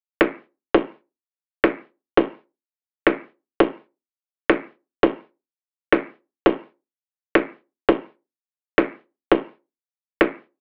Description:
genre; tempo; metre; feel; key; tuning
drum and bass; 168 BPM; 4/4; swing 55% on 16ths, half-time; none; none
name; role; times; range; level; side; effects
electronic kick drum; drums; 0.2-10.3 s; none; -19 LUFS; equal; overdrive, high-pass filter on kick, high-pass filter on room
room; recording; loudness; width
little or no reverb; dry, gritty hardware recording, telephone sound; -23 LUFS; mono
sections
0.2-10.6 A section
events
none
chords
none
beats
| 0.21 0.57 0.93 1.28 | 1.64 2.00 2.35 2.71 | 3.07 3.42 3.78 4.14 | 4.50 4.85 5.21 5.57 | 5.92 6.28 6.64 7.00 | 7.35 7.71 8.07 8.43 | 8.78 9.14 9.50 9.85 | 10.21

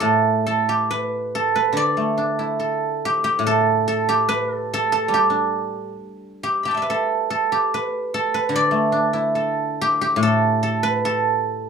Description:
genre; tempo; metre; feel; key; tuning
chinese traditional, Chinese solo plucked strings; 71 BPM; 2/4; rubato; D zhi mode; A4 = 440 Hz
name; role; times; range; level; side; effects
guzheng; solo; 0.0-11.7 s; A2 to B5; -18 LUFS; right 2 dB; none
room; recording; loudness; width
moderate small room reverb, RT60 0.6 s; rough home demo mix; -18 LUFS; side -6 dB against mid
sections
0.0-11.7 A section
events
none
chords
none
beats
| 0.02 0.90 | 1.76 2.60 | 3.43 4.27 | 5.10 5.95 | 6.81 7.67 | 8.51 9.34 | 10.19 11.02

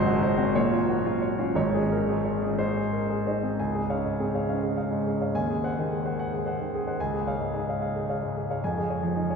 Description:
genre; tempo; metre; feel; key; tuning
classical, romantic character piece for solo piano; 57-76 BPM (dotted quarters); 6/8; rubato; Db major; A4 = 440 Hz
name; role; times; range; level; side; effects
clear concert grand piano; solo; 0.0-9.4 s; Ab1 to Ab5; -24 LUFS; equal; none
room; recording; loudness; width
wet cathedral reverb, RT60 6.4 s; heard from further back in the room; -24 LUFS; side -5 dB against mid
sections
0.0-3.6 A section; 3.6-9.4 B section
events
none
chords
0.0 Ab7; 0.5 Bbm; 1.5 Db5/Ab; 2.6 Ab; 3.6 Db; 5.3 Ab7/Eb; 7.0 Db; 8.6 Db/F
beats
0.54 | 1.55 2.58 | 3.59 4.48 | 5.34 6.17 | 6.99 7.80 | 8.61

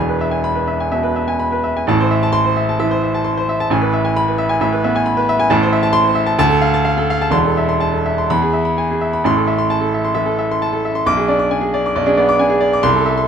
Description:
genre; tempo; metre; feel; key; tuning
classical, virtuoso piano study; 123-138 BPM; 4/4; rubato; A minor; A4 = 436 Hz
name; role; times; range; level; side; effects
clear grand piano; solo; 0.0-13.3 s; E1 to D6; -14 LUFS; equal; none
room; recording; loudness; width
moderate studio reverb, RT60 0.8 s; none; -14 LUFS; side -7 dB against mid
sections
0.0-1.9 A section; 1.9-13.3 A section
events
none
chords
0.0 E; 1.9 Am; 3.7 E/A; 5.5 Am; 6.4 Dm; 7.3 Am/E; 8.3 E; 9.2 Am; 11.1 G#dim/B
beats
0.43 0.91 1.39 | 1.87 2.34 2.79 3.25 | 3.70 4.15 4.59 5.04 | 5.50 5.94 6.39 6.85 | 7.33 7.81 8.29 8.77 | 9.25 9.72 10.17 10.62 | 11.07 11.52 11.97 12.41 | 12.85

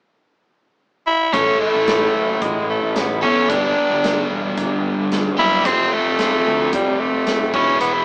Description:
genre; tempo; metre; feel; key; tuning
classic rock; 111 BPM; 4/4; straight; unclear; A4 = 438 Hz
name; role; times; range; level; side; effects
raspy tenor saxophone; melody; 1.1-8.0 s; G3 to E4; -21 LUFS; equal; none
overdriven electric guitar; riff; 1.3-8.0 s; E2 to A4; -22 LUFS; equal; none
fuzz picked electric bass; bass; 1.3-8.0 s; E1 to E2; -28 LUFS; equal; overdrive
big rock drum kit; drums; 1.3-7.9 s; hi-hat, kick drum, snare drum; -28 LUFS; equal; none
room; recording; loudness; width
moderate small room reverb, RT60 0.5 s; band playing live in one room, small speaker sound; -18 LUFS; mono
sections
0.0-1.3 A section; 1.3-8.0 B section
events
none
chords
0.0 N.C.; 1.3 A; 3.5 G; 5.7 F; 7.5 E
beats
0.26 0.80 | 1.34 1.88 2.42 2.96 | 3.50 4.03 4.57 5.11 | 5.65 6.19 6.73 7.27 | 7.80

